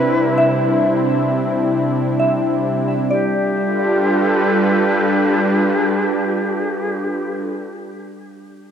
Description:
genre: ambient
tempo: 66 BPM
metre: 4/4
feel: straight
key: G mixolydian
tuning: A4 = 440 Hz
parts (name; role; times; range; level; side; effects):
- bright reedy shakuhachi; melody; 0.0-7.4 s; G4 to B4; -22 LUFS; left 1 dB; analog delay
- warm analog pad; sustained chords; 0.0-7.5 s; C3 to B4; -18 LUFS; equal; chorus
- soft synth bell; arpeggios; 0.0-8.7 s; D4 to B5; -22 LUFS; equal; chorus, analog delay
- bowed-like drone; drone; 0.0-7.4 s; G3 to D4; -24 LUFS; equal; built-in reverb
room: wet plate reverb, RT60 2.6 s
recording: echo-heavy mix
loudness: -15 LUFS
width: side -8 dB against mid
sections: 0.0-3.1 A section; 3.1-6.7 B section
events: none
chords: 0.0 Cmaj7; 3.1 G9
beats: 0.38 1.29 2.19 | 3.10 4.01 4.92 5.83

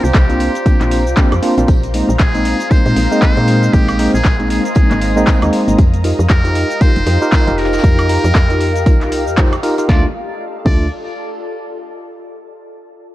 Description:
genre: deep house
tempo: 117 BPM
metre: 4/4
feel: swing 59% on 16ths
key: D phrygian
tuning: A4 = 439 Hz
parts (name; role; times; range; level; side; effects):
- trumpet with metal mute; melody; 0.0-10.9 s; G4 to D5; -23 LUFS; equal; vintage 12-bit sampler grit, analog delay
- dark analog pad; sustained chords; 0.0-10.1 s; Bb4 to F6; -27 LUFS; left 3 dB; chorus, sidechain pumping
- tine electric piano; stabs; 0.0-10.9 s; Ab3 to C5; -17 LUFS; equal; medium tremolo
- woody FM bass; bass; 0.0-10.9 s; F1 to Bb2; -17 LUFS; equal; tube saturation, sidechain pumping
- deep house drum kit; drums; 0.0-10.8 s; cabasa, crash cymbal, handclaps, hi-hat, snare drum, woodblock; -24 LUFS; equal; overdrive
- ethereal airy pad; texture; 0.0-11.9 s; Ab3 to Bb5; -25 LUFS; left 1 dB; ensemble chorus, built-in reverb, sidechain pumping
- soft string machine; texture; 0.0-9.9 s; G4 to Bb5; -33 LUFS; equal; none
- electronic kick drum; drums; 0.1-10.8 s; none; -12 LUFS; equal; overdrive
- soft brush drum kit; drums; 0.1-9.9 s; hi-hat, snare drum, tambourine; -34 LUFS; left 2 dB; none
room: little or no reverb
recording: cassette tape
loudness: -11 LUFS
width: side -15 dB against mid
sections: 0.0-9.9 A section; 9.9-11.9 B section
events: drop 0.0-9.9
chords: 0.0 C9sus4; 1.7 Bb9sus4; 5.8 F9sus4; 9.9 Dm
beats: 0.14 0.66 1.17 | 1.68 2.20 2.71 3.22 | 3.73 4.25 4.76 5.27 | 5.79 6.30 6.81 7.32 | 7.84 8.35 8.86 9.38 | 9.89 10.40 10.91 11.43

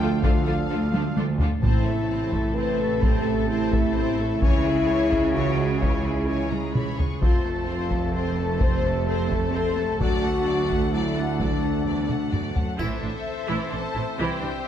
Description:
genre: cinematic, epic orchestral film score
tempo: 129 BPM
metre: 3/4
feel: straight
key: unclear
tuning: A4 = 440 Hz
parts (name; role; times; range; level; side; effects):
- warm symphonic violin section; melody; 0.0-14.7 s; E5 to C#6; -38 LUFS; left 3 dB; none
- clear symphonic violin section; second line; 0.0-14.7 s; F4 to F#5; -34 LUFS; left 4 dB; none
- clear symphonic viola section; accompaniment; 0.0-14.5 s; E3 to E4; -34 LUFS; right 3 dB; none
- mellow French horn section; sustained chords; 0.0-14.7 s; E3 to C5; -27 LUFS; left 4 dB; none
- warm trombone section; sustained chords; 0.0-12.5 s; C3 to A3; -33 LUFS; right 3 dB; none
- warm woodwind section; sustained chords; 0.0-14.7 s; A3 to A5; -36 LUFS; left 2 dB; none
- clear symphonic cello section; bass; 0.0-14.5 s; D2 to C#3; -29 LUFS; right 4 dB; none
- clear symphonic double bass section; bass; 0.0-14.5 s; F1 to D2; -30 LUFS; right 3 dB; none
- taiko ensemble; drums; 0.2-13.7 s; none; -26 LUFS; equal; none
- timpani; percussion; 1.6-2.3 s; A2; -28 LUFS; equal; none
- triangle; percussion; 12.8-13.7 s; none; -52 LUFS; left 3 dB; none
room: moderate scoring stage reverb, RT60 1.5 s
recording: dark, warm production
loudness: -21 LUFS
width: side -10 dB against mid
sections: 0.0-1.6 A section; 1.6-12.8 B section; 12.8-14.7 C section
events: drum fill 0.9-1.6, 6.5-7.2, 12.1-12.8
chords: 0.0 Dm; 1.6 Am; 4.4 C#m; 7.2 F; 10.0 D; 12.8 Am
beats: | 0.23 0.70 1.17 | 1.63 2.10 2.56 | 3.03 3.49 3.96 | 4.42 4.89 5.35 | 5.82 6.28 6.75 | 7.21 7.68 8.14 | 8.61 9.07 9.54 | 10.00 10.47 10.93 | 11.40 11.86 12.33 | 12.79 13.26 13.72 | 14.19 14.65

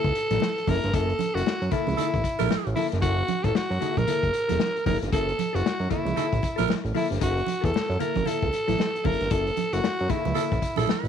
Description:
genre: funk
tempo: 115 BPM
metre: 4/4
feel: swing 60% on 16ths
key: unclear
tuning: A4 = 440 Hz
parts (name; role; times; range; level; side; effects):
- raspy alto saxophone; melody; 0.0-10.9 s; E4 to A#4; -27 LUFS; equal; none
- vintage hollow-body jazz guitar; accompaniment; 0.0-11.1 s; A#3 to A4; -32 LUFS; left 13 dB; none
- fat analog bass; bass; 0.0-11.1 s; E1 to F#2; -27 LUFS; right 1 dB; none
- vintage drum kit; drums; 0.0-11.1 s; hi-hat, kick drum, snare drum; -30 LUFS; left 4 dB; none
- congas; percussion; 0.3-11.0 s; none; -32 LUFS; right 13 dB; none
- raspy tenor saxophone; second line; 2.0-2.7, 6.2-6.7, 10.3-11.1 s; A4 to A#4; -30 LUFS; right 15 dB; none
room: light reverb, studio reverb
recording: 1960s-style stereo with parts hard left and right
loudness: -23 LUFS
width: side -8 dB against mid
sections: 0.0-11.1 A section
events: none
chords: 0.0 F#7#9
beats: 0.41 | 0.94 1.46 1.99 2.51 | 3.03 3.56 4.08 4.60 | 5.13 5.65 6.17 6.70 | 7.22 7.74 8.26 8.79 | 9.31 9.83 10.36 10.88

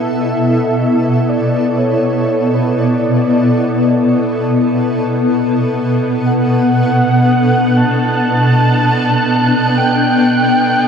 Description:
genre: ambient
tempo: free time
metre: none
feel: none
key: unclear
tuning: A4 = 441 Hz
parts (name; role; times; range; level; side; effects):
- warm velvety synth lead; melody; 0.0-10.9 s; B4 to A5; -18 LUFS; right 1 dB; chorus, shimmer reverb, ping-pong delay
- granular cloud pad; sustained chords; 0.0-10.9 s; B2 to A4; -12 LUFS; equal; built-in reverb, shimmer reverb
- wind-like tuned noise texture; texture; 6.4-10.9 s; F#6; -22 LUFS; right 2 dB; built-in reverb, shimmer reverb
room: wet huge ambient reverb, RT60 8.3 s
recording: dark, warm production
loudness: -11 LUFS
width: side -7 dB against mid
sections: 0.0-10.9 A section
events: none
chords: 0.0 D5/B; 5.7 Gmaj7/B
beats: free time

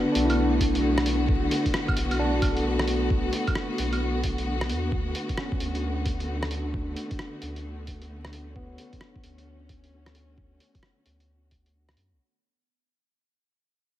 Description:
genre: future garage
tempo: 132 BPM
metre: 4/4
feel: swing 64% on 16ths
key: unclear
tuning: A4 = 440 Hz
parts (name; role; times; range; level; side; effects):
- barky tine electric piano; accompaniment; 0.0-12.2 s; B3 to A4; -30 LUFS; equal; sidechain pumping, digital delay
- rich studio string section; sustained chords; 0.0-12.2 s; D3 to F#4; -30 LUFS; left 2 dB; sidechain pumping
- warm sub bass; bass; 0.2-12.2 s; B1 to F#2; -30 LUFS; equal; sidechain pumping
- lo-fi sampler-style drum kit; drums; 0.2-12.1 s; claves, hi-hat, rim click; -33 LUFS; right 1 dB; none
- electronic kick drum; drums; 0.6-11.6 s; none; -29 LUFS; equal; none
room: light reverb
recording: vinyl crackle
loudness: -24 LUFS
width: side -13 dB against mid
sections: 0.0-12.2 A section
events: fade-out 0.0-12.2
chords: 0.0 Bm7; 4.9 D6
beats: 0.38 0.83 | 1.29 1.74 2.19 2.65 | 3.10 3.56 4.01 4.47 | 4.92 5.38 5.83 6.29 | 6.74 7.20 7.65 8.10 | 8.56 9.01 9.47 9.92 | 10.38 10.83 11.29 11.74

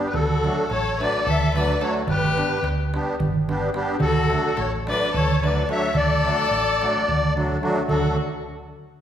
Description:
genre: balkan folk, Balkan wedding band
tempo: 217 BPM (eighths)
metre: 7/8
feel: straight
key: D major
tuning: A4 = 439 Hz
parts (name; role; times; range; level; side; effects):
- musette accordion; accompaniment; 0.0-8.2 s; F#3 to G4; -27 LUFS; equal; none
- darbuka; percussion; 0.0-8.2 s; none; -28 LUFS; right 4 dB; none
- musette accordion; melody; 0.1-8.2 s; A4 to E5; -24 LUFS; left 1 dB; none
- clear violin; second line; 0.1-8.2 s; F#4 to C#5; -27 LUFS; left 4 dB; none
- hollow-body short-scale fingered electric bass; bass; 0.1-8.2 s; G1 to D2; -26 LUFS; right 1 dB; none
room: wet scoring stage reverb, RT60 1.7 s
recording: recorded in a church or concert hall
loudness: -19 LUFS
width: side -10 dB against mid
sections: 0.0-7.9 A section; 7.9-9.0 B section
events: drum fill 7.5-7.9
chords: 0.1 D; 2.1 G; 4.0 D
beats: | 0.14 0.41 0.69 0.97 1.24 1.52 1.80 | 2.08 2.35 2.63 2.90 3.18 3.46 3.74 | 4.01 4.29 4.57 4.84 5.12 5.40 5.67 | 5.95 6.23 6.50 6.78 7.06 7.33 7.61 | 7.88 8.16

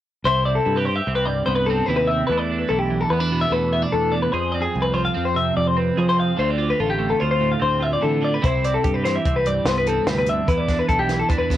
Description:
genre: math rock and midwest emo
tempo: 147 BPM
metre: 5/4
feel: straight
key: C major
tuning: A4 = 440 Hz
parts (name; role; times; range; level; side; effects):
- growling fingered electric bass; bass; 0.2-11.6 s; A1 to F3; -24 LUFS; equal; overdrive
- twelve-string electric guitar; accompaniment; 0.3-11.6 s; E2 to Ab4; -24 LUFS; right 6 dB; phaser, cassette tape
- twelve-string electric guitar; arpeggios; 0.3-11.6 s; G4 to F5; -21 LUFS; left 3 dB; cassette tape
- compact cocktail drum kit; drums; 8.4-11.6 s; hi-hat, kick drum, snare drum; -24 LUFS; equal; cassette tape
room: light reverb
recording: home recording on cassette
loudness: -18 LUFS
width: side -12 dB against mid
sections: 0.2-11.6 A section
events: none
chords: 0.2 Cmaj7; 2.3 E7sus4; 4.3 Fm; 6.4 Dm7; 8.4 Cmaj7; 10.5 E7sus4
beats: | 0.25 0.66 1.07 1.47 1.88 | 2.29 2.70 3.11 3.52 3.92 | 4.33 4.74 5.15 5.56 5.97 | 6.38 6.79 7.20 7.61 8.02 | 8.42 8.83 9.24 9.65 10.06 | 10.47 10.88 11.29

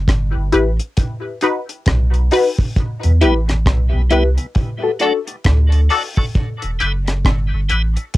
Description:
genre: dub reggae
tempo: 67 BPM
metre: 4/4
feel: swing 60% on 16ths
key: E minor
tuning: A4 = 439 Hz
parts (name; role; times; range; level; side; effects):
- warm sub bass; bass; 0.0-8.0 s; E1 to E2; -15 LUFS; equal; none
- deep reggae drum kit; drums; 0.1-8.2 s; hi-hat, kick drum, rim click; -18 LUFS; equal; none
- filtered dub chord stab; stabs; 0.5-7.9 s; D4 to B4; -18 LUFS; left 3 dB; phaser, high-pass filter, cassette tape, dub echo
- tonewheel organ; accompaniment; 3.0-8.0 s; D2 to E4; -25 LUFS; equal; overdrive, stopped rotary speaker, high-pass filter, cassette tape, dub echo
room: light reverb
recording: home recording on cassette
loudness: -14 LUFS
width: side -17 dB against mid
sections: 0.0-8.2 A section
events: break 0.0-2.8; filter sweep 2.8-8.2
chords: 0.0 Em; 1.0 B; 2.8 Em; 4.6 D; 6.4 Em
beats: 0.08 0.97 1.87 | 2.77 3.66 4.56 5.46 | 6.35 7.25 8.15

